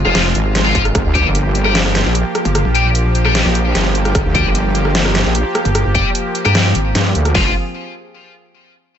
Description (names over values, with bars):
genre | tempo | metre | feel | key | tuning
heavy wobble dubstep | 150 BPM | 4/4 | half-time | F dorian | A4 = 440 Hz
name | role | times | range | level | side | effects
supersaw pad | sustained chords | 0.0-7.5 s | C3 to Ab4 | -21 LUFS | right 1 dB | sidechain pumping
pulsing pluck wobble bass | bass | 0.0-6.9 s | F1 to G2 | -15 LUFS | equal | chorus, overdrive
scooped high-gain guitar | stabs | 0.1-7.5 s | F4 to G5 | -19 LUFS | left 5 dB | distortion, digital delay
wobble bass | bass | 0.1-7.5 s | F1 to G2 | -16 LUFS | equal | chorus, overdrive
dubstep drum kit | drums | 0.1-7.3 s | hi-hat, rim click, snare drum | -18 LUFS | left 1 dB | overdrive
dubstep drum kit | drums | 0.8-1.2, 4.2-7.4 s | hi-hat, kick drum, snare drum | -18 LUFS | equal | overdrive
room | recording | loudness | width
light reverb | nothing above 8.0 kHz | -12 LUFS | side -9 dB against mid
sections
0.0-7.3 A section; 7.3-8.9 B section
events
drop 0.0-7.3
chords
0.0 Fm; 0.9 Gm7; 7.3 F5